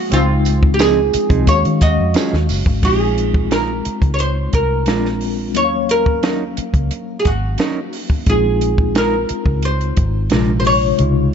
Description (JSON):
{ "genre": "lush 1970s-style soul", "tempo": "88 BPM", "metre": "4/4", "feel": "straight", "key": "unclear", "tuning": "A4 = 439 Hz", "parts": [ { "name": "oud", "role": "melody", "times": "0.0-11.3 s", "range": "F4 to Eb5", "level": "-19 LUFS", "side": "right 1 dB", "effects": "none" }, { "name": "mellow tine electric piano", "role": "accompaniment", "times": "0.0-11.3 s", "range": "C3 to F5", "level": "-22 LUFS", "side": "left 4 dB", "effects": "medium stereo tremolo" }, { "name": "mellow trombone section", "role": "stabs", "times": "0.1-0.6 s", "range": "Ab2 to C4", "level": "-25 LUFS", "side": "right 2 dB", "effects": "none" }, { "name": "vintage muted fingered electric bass", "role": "bass", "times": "0.1-11.3 s", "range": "Gb1 to Eb3", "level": "-19 LUFS", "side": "equal", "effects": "none" }, { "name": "compact cocktail drum kit", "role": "drums", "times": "0.1-11.1 s", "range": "crash cymbal, hi-hat, kick drum, snare drum", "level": "-19 LUFS", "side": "equal", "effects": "none" }, { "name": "tambourine", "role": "percussion", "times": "0.1-2.7 s", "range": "none", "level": "-32 LUFS", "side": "right 10 dB", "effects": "none" }, { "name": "mellow electric guitar", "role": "riff", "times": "0.8-10.5 s", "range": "F3 to Bb4", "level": "-26 LUFS", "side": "right 6 dB", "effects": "none" } ], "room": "light reverb, small room reverb", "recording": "dark, warm production, nothing above 7.7 kHz", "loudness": "-14 LUFS", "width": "side -7 dB against mid", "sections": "0.0-2.8 A section; 2.8-11.3 B section", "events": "none", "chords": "0.1 Dbmaj9; 1.5 Ebm11; 2.8 Bb7sus4; 4.9 Bb7; 5.5 Ebm7; 8.3 Bb7sus4; 10.3 Bb7", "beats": "| 0.11 0.79 1.47 2.15 | 2.83 3.51 4.19 4.87 | 5.55 6.23 6.91 7.59 | 8.27 8.95 9.63 10.31 | 10.99" }